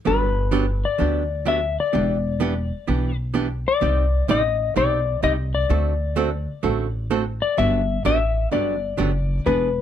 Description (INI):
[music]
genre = country, western swing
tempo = 128 BPM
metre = 4/4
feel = swing 66% on 8ths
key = G major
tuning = A4 = 440 Hz
[part]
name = clean lap steel guitar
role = melody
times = 0.1-9.8 s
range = B4 to E5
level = -23 LUFS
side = left 6 dB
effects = plate reverb
[part]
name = archtop guitar, miked and amplified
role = accompaniment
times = 0.1-9.7 s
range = C3 to D5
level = -24 LUFS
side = right 6 dB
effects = none
[part]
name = upright bass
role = bass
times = 0.1-9.8 s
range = E1 to D2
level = -23 LUFS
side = equal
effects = none
[sound]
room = light reverb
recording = none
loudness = -19 LUFS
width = side -10 dB against mid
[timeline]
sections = 0.0-9.8 A section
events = none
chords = 0.1 Gmaj7; 1.9 Em7; 3.8 Cmadd9; 5.7 D7; 7.6 Gmaj7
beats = | 0.07 0.54 1.01 1.48 | 1.95 2.42 2.88 3.35 | 3.82 4.29 4.76 5.23 | 5.70 6.17 6.64 7.11 | 7.58 8.05 8.52 8.99 | 9.46